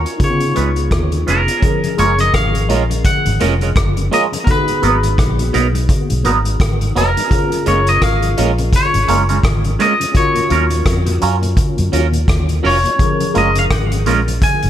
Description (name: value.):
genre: lovers rock reggae.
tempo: 84 BPM.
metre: 4/4.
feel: swing 59% on 16ths.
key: F# major.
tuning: A4 = 440 Hz.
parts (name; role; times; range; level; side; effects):
twangy electric guitar; melody; 0.0-14.7 s; A#4 to G#5; -18 LUFS; left 1 dB; tape echo.
tine electric piano; accompaniment; 0.0-14.7 s; E#3 to A#4; -23 LUFS; left 2 dB; ensemble chorus.
vintage muted fingered electric bass; bass; 0.0-14.7 s; E#1 to C#3; -17 LUFS; equal; none.
twangy electric guitar; stabs; 0.1-14.3 s; F#3 to B4; -20 LUFS; right 7 dB; phaser.
vintage drum kit; drums; 0.1-14.7 s; hi-hat, kick drum, rim click; -18 LUFS; equal; gated reverb.
mellow tonewheel organ; accompaniment; 0.4-14.7 s; D#2 to F#4; -25 LUFS; left 4 dB; chorus vibrato, slow rotary speaker, tape echo.
room: light reverb, small room ambience.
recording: none.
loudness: -12 LUFS.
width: side -11 dB against mid.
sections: 0.0-1.6 A section; 1.6-14.7 B section.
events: none.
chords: 0.2 C#7; 1.6 F#maj9; 4.5 G#m9; 7.3 F#maj9; 10.1 D#m9; 13.0 F#maj9.